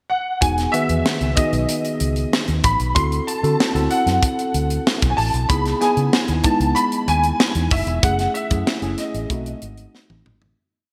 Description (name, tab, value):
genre	polished 1980s jazz-funk pop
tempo	95 BPM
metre	4/4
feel	straight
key	E major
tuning	A4 = 440 Hz
part	warm concert grand piano	melody	0.1-10.2 s	D#5 to C6	-25 LUFS	equal	ensemble chorus
part	mellow tine electric piano	accompaniment	0.4-10.6 s	D#3 to B4	-26 LUFS	equal	analog chorus
part	vintage muted fingered electric bass	bass	0.4-10.5 s	E1 to D3	-24 LUFS	equal	none
part	tight funk drum kit	drums	0.4-10.6 s	hi-hat, kick drum, snare drum, toms	-23 LUFS	equal	gated reverb
room	moderate lush hall reverb, RT60 3.0 s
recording	bright 1980s-style digital production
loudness	-19 LUFS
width	mono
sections	0.0-0.4 pickup bar; 0.4-10.6 verse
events	fade-out 8.0-10.6; drum fill 9.9-10.6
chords	0.4 Emaj9; 3.0 D9; 5.5 C#m7; 8.0 F#m7; 9.3 B7b9